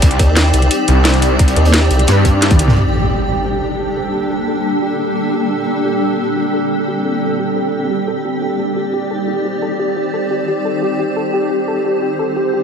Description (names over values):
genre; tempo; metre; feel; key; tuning
dark technical drum and bass; 175 BPM; 4/4; straight; G minor; A4 = 440 Hz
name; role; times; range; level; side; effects
swarming drone; sustained chords; 0.0-12.6 s; G3 to D5; -20 LUFS; right 1 dB; built-in reverb, sidechain pumping
wide detuned saw bass; bass; 0.0-2.8 s; C2 to G2; -14 LUFS; equal; chorus, overdrive, sidechain pumping
crunchy breakbeat drum kit; drums; 0.0-2.8 s; hi-hat, snare drum; -26 LUFS; equal; none
drum and bass drum kit; drums; 0.0-2.7 s; hi-hat, snare drum, toms; -16 LUFS; equal; low-pass filter on snare, low-pass filter on hats, low-pass filter on toms, low-pass filter on room
electronic kick drum; drums; 0.0-2.6 s; none; -11 LUFS; equal; none
granular cloud pad; texture; 0.0-12.6 s; Bb3 to G5; -19 LUFS; equal; built-in reverb, sidechain pumping
formant-sweep wobble bass; bass; 0.2-2.1 s; C2 to Eb2; -12 LUFS; equal; chorus
soft round pluck; arpeggios; 2.8-12.6 s; G4 to A4; -23 LUFS; left 2 dB; lush chorus, sidechain pumping, dub echo
impact; sound effects; 2.8-4.1 s; none; -20 LUFS; equal; none
room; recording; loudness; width
moderate lush hall reverb, RT60 2.1 s; none; -13 LUFS; side -7 dB against mid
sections
0.0-2.8 A section; 2.8-12.6 B section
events
drop 0.0-2.8; drum fill 2.4-2.8; impact 2.8-4.1; filter sweep on synth pluck 2.8-12.6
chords
0.0 Cm; 2.8 Gm; 8.2 Cm